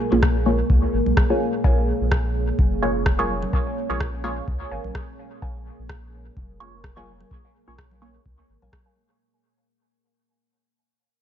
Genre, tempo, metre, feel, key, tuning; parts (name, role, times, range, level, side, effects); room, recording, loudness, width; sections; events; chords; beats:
dub techno; 127 BPM; 4/4; swing 55% on 16ths; Bb minor; A4 = 441 Hz
deep dark ambient pad; sustained chords; 0.0-9.2 s; Bb3 to Db5; -28 LUFS; right 1 dB; chorus, built-in reverb, sidechain pumping
filtered dub chord stab; stabs; 0.1-8.3 s; Bb3 to Db5; -26 LUFS; equal; phaser, sidechain pumping, dub echo
soft dub sub bass; bass; 0.1-8.7 s; F1 to Db2; -26 LUFS; equal; sidechain pumping
electronic toms and congas; percussion; 0.1-8.8 s; -35 LUFS; equal; overdrive, sidechain pumping on toms, sidechain pumping on perc, dub echo
electronic kick drum; drums; 0.2-8.8 s; -21 LUFS; equal
electronic rim click; drums; 0.2-8.8 s; -29 LUFS; equal; dub echo
warbly dusty pluck; riff; 1.3-9.0 s; Bb4 to Ab5; -35 LUFS; left 2 dB; chorus, phaser, sidechain pumping, dub echo
light reverb; nothing above 7.7 kHz; -19 LUFS; side -10 dB against mid
0.0-9.2 A section
fade-out 0.0-9.2; filter sweep on synth stab 0.0-9.2
0.0 Bbm7
0.23 0.70 1.17 | 1.64 2.12 2.59 3.06 | 3.53 4.00 4.48 4.95 | 5.42 5.89 6.37 6.84 | 7.31 7.78 8.26 8.73